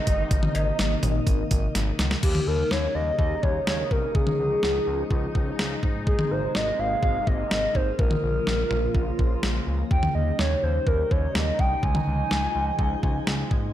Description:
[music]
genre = synth-pop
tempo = 125 BPM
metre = 4/4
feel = straight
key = Eb mixolydian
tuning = A4 = 438 Hz
[part]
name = hollow clarinet-like synth lead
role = melody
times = 0.0-13.5 s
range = G4 to Ab5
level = -27 LUFS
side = equal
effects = chorus, analog delay, shimmer reverb
[part]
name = sweeping resonant pad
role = sustained chords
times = 0.0-13.7 s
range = C3 to F4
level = -32 LUFS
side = left 2 dB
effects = chorus, shimmer reverb
[part]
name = smooth gliding synth bass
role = bass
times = 0.1-13.7 s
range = G1 to Eb2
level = -28 LUFS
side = equal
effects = none
[part]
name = clean 12-bit digital drum machine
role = drums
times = 0.1-13.6 s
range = cowbell, crash cymbal, hi-hat, kick drum, snare drum, toms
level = -26 LUFS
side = equal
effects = none
[sound]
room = light reverb, digital ambience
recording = none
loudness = -22 LUFS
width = side -12 dB against mid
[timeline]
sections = 0.0-2.2 A section; 2.2-13.7 B section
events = drum fill 1.7-2.2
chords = 0.0 Ab; 2.2 Eb7; 4.1 Dbadd9; 5.8 Abadd9; 8.0 Bbm; 9.9 Eb7; 11.8 Dbadd9

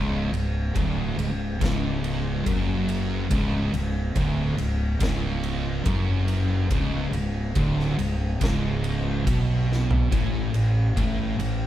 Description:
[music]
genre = stoner and doom metal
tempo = 70 BPM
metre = 4/4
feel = straight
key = unclear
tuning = A4 = 440 Hz
[part]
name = thick fuzz guitar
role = riff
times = 0.0-11.7 s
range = C#2 to B2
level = -29 LUFS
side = left 4 dB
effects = distortion
[part]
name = thick fuzz guitar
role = riff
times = 0.0-11.7 s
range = C#2 to B2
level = -28 LUFS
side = right 4 dB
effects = distortion
[part]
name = thick fuzz guitar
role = riff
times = 0.0-11.7 s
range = C#2 to B2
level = -32 LUFS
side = equal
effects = distortion
[part]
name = fuzz fingered electric bass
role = bass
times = 0.0-11.7 s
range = C#1 to B1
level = -28 LUFS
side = equal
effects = overdrive
[part]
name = oversized low-tuned drum kit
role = drums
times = 0.3-11.6 s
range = kick drum, ride cymbal, snare drum, toms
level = -28 LUFS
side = equal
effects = none
[sound]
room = light reverb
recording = band playing live in one room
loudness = -22 LUFS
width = side -12 dB against mid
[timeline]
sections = 0.0-11.7 A section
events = drum fill 9.7-10.1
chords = 0.0 Bmadd9/C#; 10.1 N.C.

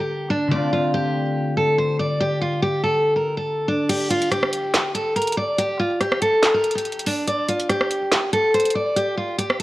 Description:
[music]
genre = hip hop, trap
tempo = 142 BPM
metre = 4/4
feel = half-time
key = unclear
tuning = A4 = 440 Hz
[part]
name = picked steel-string acoustic guitar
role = melody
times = 0.0-9.6 s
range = D4 to D5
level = -20 LUFS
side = equal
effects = low-pass filter
[part]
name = concert harp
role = accompaniment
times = 0.0-3.9 s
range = D3 to G4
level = -25 LUFS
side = left 2 dB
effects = low-pass filter
[part]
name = trap drum kit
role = drums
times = 3.9-9.6 s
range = crash cymbal, handclaps, hi-hat, rim click, snare drum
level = -23 LUFS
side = right 1 dB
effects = none
[sound]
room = light reverb, digital ambience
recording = worn, warbling old tape, cassette tape, warbly pitch drift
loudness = -19 LUFS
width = side -16 dB against mid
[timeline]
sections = 0.0-3.9 A section; 3.9-9.6 B section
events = kick muted 3.9-9.6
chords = 0.0 Gm; 0.5 Dm7; 3.9 N.C.

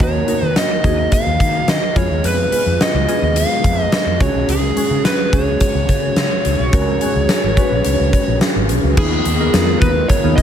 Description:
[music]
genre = 1980s-style pop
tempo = 107 BPM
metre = 4/4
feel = straight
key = unclear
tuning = A4 = 440 Hz
[part]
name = fuzz lead guitar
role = melody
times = 0.0-10.4 s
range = Ab4 to F5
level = -20 LUFS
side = right 1 dB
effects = distortion, ping-pong delay
[part]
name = glassy digital keys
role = accompaniment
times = 0.0-10.4 s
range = Ab3 to D#5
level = -21 LUFS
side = left 1 dB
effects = chorus
[part]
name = fretless electric bass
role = bass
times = 0.0-10.4 s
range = Ab1 to Eb3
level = -19 LUFS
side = equal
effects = analog chorus
[part]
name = huge arena drum kit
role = drums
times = 0.0-10.4 s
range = crash cymbal, hi-hat, kick drum, snare drum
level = -17 LUFS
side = equal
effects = gated reverb
[part]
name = phased analog pad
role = sustained chords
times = 9.6-10.4 s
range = Eb3 to F4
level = -25 LUFS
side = right 3 dB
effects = phaser, chorus
[sound]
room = light reverb, studio reverb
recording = none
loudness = -13 LUFS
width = side -9 dB against mid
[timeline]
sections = 0.0-9.0 A section; 9.0-10.4 B section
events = none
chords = 0.0 Ebm; 2.0 Fdim; 4.2 Dbsus4; 9.0 Fm7b5/Eb

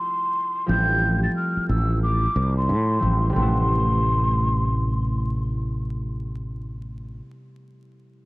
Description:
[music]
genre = hip hop, boom-bap hip-hop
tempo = 90 BPM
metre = 4/4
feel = swing 63% on 16ths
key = A minor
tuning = A4 = 440 Hz
[part]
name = breathy mellow jazz flute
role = melody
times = 0.0-5.3 s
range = C6 to A6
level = -25 LUFS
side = equal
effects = high-pass filter, low-pass filter, tape echo
[part]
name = concert harp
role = accompaniment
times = 0.0-7.3 s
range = C3 to E4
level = -28 LUFS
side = equal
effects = high-pass filter, low-pass filter
[part]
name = fretless electric bass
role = bass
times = 0.7-7.2 s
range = A1 to A2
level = -23 LUFS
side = equal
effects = none
[sound]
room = light reverb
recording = vinyl crackle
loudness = -20 LUFS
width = side -22 dB against mid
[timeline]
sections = 0.0-3.4 A section; 3.4-6.0 B section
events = none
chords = 0.0 Fmaj7/A; 3.4 Am7

